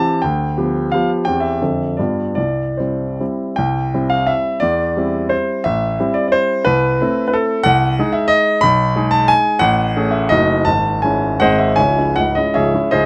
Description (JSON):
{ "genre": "classical, romantic triple-time dance for piano with dotted rhythms", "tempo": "136-192 BPM", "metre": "3/4", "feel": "rubato", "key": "C major, C# minor from 7.7 s", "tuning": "A4 = 445 Hz", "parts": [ { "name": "warm baby grand piano", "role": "solo", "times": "0.0-13.1 s", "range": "C#1 to B5", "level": "-16 LUFS", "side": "equal", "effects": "none" } ], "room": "little or no reverb", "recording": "close, detailed microphones", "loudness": "-17 LUFS", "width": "mono", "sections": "0.0-3.6 A section; 3.6-11.8 B section; 11.8-13.1 C section", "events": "none", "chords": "0.2 G7/D; 1.3 C/E; 1.6 Dm7/F; 2.0 G7; 2.4 C; 4.6 C/E; 5.6 Am7; 6.6 Am/C; 7.7 G#/B#; 8.6 G#m/B; 9.6 Amaj7; 10.3 D#dim/F#; 10.7 C#m/G#; 11.4 G#; 11.8 C#m" }